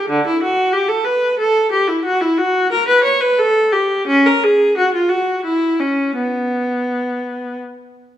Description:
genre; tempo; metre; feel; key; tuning
classical, baroque-style suite movement for unaccompanied viola; 80-94 BPM; 3/4; rubato; B minor; A4 = 439 Hz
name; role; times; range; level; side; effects
rich viola; solo; 0.0-7.6 s; D3 to C#5; -14 LUFS; equal; none
room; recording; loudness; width
moderate recital hall reverb, RT60 1.5 s; dark, warm production; -14 LUFS; side -11 dB against mid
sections
0.0-8.2 A section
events
none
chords
none

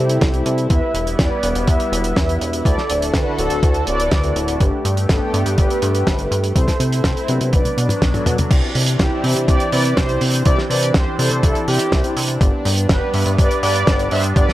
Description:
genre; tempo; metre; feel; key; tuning
italo disco; 123 BPM; 4/4; straight; unclear; A4 = 436 Hz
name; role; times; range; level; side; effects
mellow synth brass; melody; 0.0-14.5 s; D4 to E5; -22 LUFS; equal; chorus, tape echo
lush unison pad; sustained chords; 0.0-14.5 s; D3 to A4; -25 LUFS; equal; chorus, phaser
tine electric piano; stabs; 0.0-14.5 s; F#3 to F#5; -27 LUFS; left 2 dB; medium stereo tremolo
chorused synth bass; bass; 0.0-14.5 s; D1 to C3; -20 LUFS; equal; none
damped 70s drum kit; drums; 0.1-14.5 s; crash cymbal, hi-hat, snare drum, toms; -22 LUFS; right 1 dB; none
electronic kick drum; drums; 0.2-14.5 s; none; -18 LUFS; equal; overdrive
room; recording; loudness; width
studio reverb; dry, gritty hardware recording, transformer saturation; -15 LUFS; side -15 dB against mid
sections
0.0-8.5 A section; 8.5-14.5 B section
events
drum fill 7.5-8.5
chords
0.0 C6; 0.7 Em; 2.7 Dadd9; 4.6 Gadd9; 6.6 C6; 7.5 Bm; 8.5 Cadd9; 12.4 G

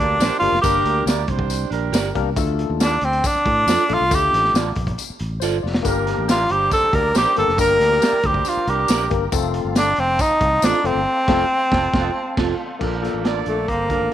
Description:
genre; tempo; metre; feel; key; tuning
uptempo 1960s-style soul; 138 BPM; 4/4; straight; unclear; A4 = 440 Hz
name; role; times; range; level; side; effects
breathy tenor saxophone; melody; 0.0-14.1 s; A3 to Bb4; -18 LUFS; equal; none
warm horn section; second line; 0.0-2.1, 5.8-9.1, 12.8-14.1 s; F3 to D5; -27 LUFS; right 10 dB; none
fingered electric bass; bass; 0.0-14.1 s; F1 to A2; -25 LUFS; equal; none
electric guitar through a small old amp; stabs; 0.2-14.1 s; C4 to D5; -28 LUFS; right 10 dB; phaser
crunchy breakbeat drum kit; drums; 0.2-14.1 s; crash cymbal, hi-hat, kick drum, snare drum; -24 LUFS; equal; none
tambourine; percussion; 0.2-10.7 s; none; -32 LUFS; left 12 dB; none
barky tine electric piano; accompaniment; 0.4-14.1 s; A3 to D5; -26 LUFS; left 11 dB; tube saturation, analog chorus
mellow tonewheel organ; sustained chords; 5.9-14.1 s; F5 to D6; -33 LUFS; equal; chorus vibrato, wide subtle chorus
room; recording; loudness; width
light reverb, studio reverb; 1960s-style stereo with parts hard left and right; -16 LUFS; side -11 dB against mid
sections
0.0-12.8 A section; 12.8-14.1 B section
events
drum fill 5.4-5.8; band accent 11.1-12.8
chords
0.0 Gm; 2.4 Dm; 5.8 Gm; 9.3 F; 12.8 Bbmaj7

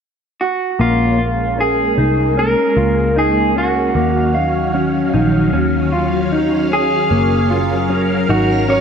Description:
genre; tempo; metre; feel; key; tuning
dream pop; 76 BPM; 4/4; straight; Bb minor; A4 = 440 Hz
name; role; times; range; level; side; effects
electric guitar through a small old amp; melody; 0.4-8.8 s; F4 to Db5; -18 LUFS; right 2 dB; tape echo
ensemble organ-string; sustained chords; 0.8-8.8 s; Eb3 to F5; -19 LUFS; equal; phaser, ensemble chorus
mellow electric guitar; arpeggios; 0.8-8.8 s; Bb3 to F5; -19 LUFS; left 2 dB; wide subtle chorus, tape echo
vintage muted picked electric bass; bass; 0.8-8.8 s; Gb1 to Eb2; -20 LUFS; equal; none
backwards swelling texture; texture; 8.5-8.8 s; Bb4; -31 LUFS; right 2 dB; built-in reverb, tape echo
room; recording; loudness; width
moderate scoring stage reverb, RT60 1.5 s, digital ambience; nothing above 10.4 kHz; -13 LUFS; side -7 dB against mid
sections
0.8-8.8 A section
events
none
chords
0.0 N.C.; 0.8 Bbm7; 3.9 Ebm9; 7.1 Gbmaj7

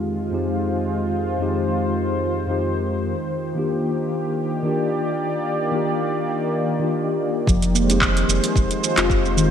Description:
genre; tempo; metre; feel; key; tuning
organic downtempo; 111 BPM; 4/4; swing 55% on 16ths; F dorian; A4 = 445 Hz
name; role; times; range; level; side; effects
mellow tine electric piano; accompaniment; 0.0-9.5 s; F2 to G4; -24 LUFS; left 2 dB; medium stereo tremolo, sidechain pumping, low-pass filter, ping-pong delay
warm analog pad; sustained chords; 0.0-9.5 s; Eb3 to D5; -24 LUFS; right 1 dB; chorus, tremolo, sidechain pumping
steel tongue drum; arpeggios; 7.5-9.5 s; Eb3 to F4; -24 LUFS; left 2 dB; ping-pong delay
warm sub bass; bass; 7.5-9.5 s; F1; -23 LUFS; equal; sidechain pumping
afro-pop drum kit; drums; 7.5-9.5 s; handclaps, hi-hat, shaker; -23 LUFS; right 2 dB; none
electronic kick drum; drums; 7.5-9.2 s; none; -21 LUFS; equal; none
room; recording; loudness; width
wet lush hall reverb, RT60 1.8 s, digital ambience; bright 1980s-style digital production; -19 LUFS; side -8 dB against mid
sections
0.0-7.5 A section; 7.5-9.5 B section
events
none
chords
0.0 Fm7; 3.1 Ebmaj7; 7.5 Fm7

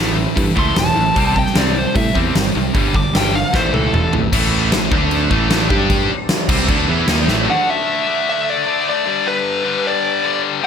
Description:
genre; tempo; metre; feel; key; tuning
hard rock; 152 BPM; 4/4; straight; unclear; A4 = 440 Hz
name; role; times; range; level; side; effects
overdriven tonewheel organ; sustained chords; 0.0-10.7 s; G3 to E5; -30 LUFS; equal; chorus vibrato, slow rotary speaker
heavy high-gain guitar; riff; 0.0-10.7 s; G2 to G4; -21 LUFS; left 12 dB; distortion
overdriven electric guitar; riff; 0.0-7.5 s; G2 to G4; -22 LUFS; right 12 dB; none
modern bright picked electric bass; bass; 0.0-7.5 s; E1 to A2; -20 LUFS; equal; none
huge arena drum kit; drums; 0.4-7.4 s; crash cymbal, hi-hat, kick drum, snare drum, toms; -18 LUFS; equal; none
smooth overdriven lead guitar; melody; 0.6-4.1, 7.5-10.7 s; A4 to D6; -19 LUFS; left 1 dB; analog delay
high-gain distorted guitar; riff; 4.3-7.5 s; A2 to G4; -24 LUFS; right 1 dB; distortion
room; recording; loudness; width
light reverb, small room ambience; none; -14 LUFS; side -7 dB against mid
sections
0.0-4.3 A section; 4.3-7.5 B section; 7.5-10.7 C section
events
lead electric guitar solo 0.0-4.3; drum fill 3.5-4.3, 7.3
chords
0.0 A5; 1.2 C5; 2.7 G5; 3.5 A; 4.3 A5; 4.9 D5; 5.3 A5; 5.7 G5; 6.5 A5; 7.5 D5; 9.1 G

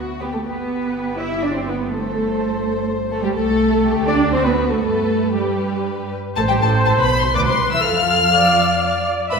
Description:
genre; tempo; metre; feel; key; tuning
quick classical-period movement for string orchestra; 123 BPM; 3/4; straight; G major, A minor from 6.4 s; A4 = 441 Hz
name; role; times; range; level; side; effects
rich chamber violin section; melody; 0.0-9.4 s; F#4 to F6; -22 LUFS; left 5 dB; none
warm chamber double bass section; bass; 0.0-9.4 s; G1 to G2; -26 LUFS; right 3 dB; none
dark chamber violin section; second line; 0.2-9.4 s; G4 to F5; -23 LUFS; left 2 dB; none
warm chamber viola section; accompaniment; 0.2-9.4 s; G3 to E5; -21 LUFS; right 1 dB; none
dark chamber cello section; bass; 0.2-9.4 s; G2 to E4; -24 LUFS; right 3 dB; none
room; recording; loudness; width
wet scoring stage reverb, RT60 1.5 s; heard from further back in the room; -16 LUFS; side -5 dB against mid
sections
0.0-6.4 A section; 6.4-9.4 B section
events
none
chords
0.5 G; 1.9 Am7/G; 3.4 Am/C; 3.9 G5/D; 4.3 D7; 4.8 G; 6.4 Am; 7.8 F6

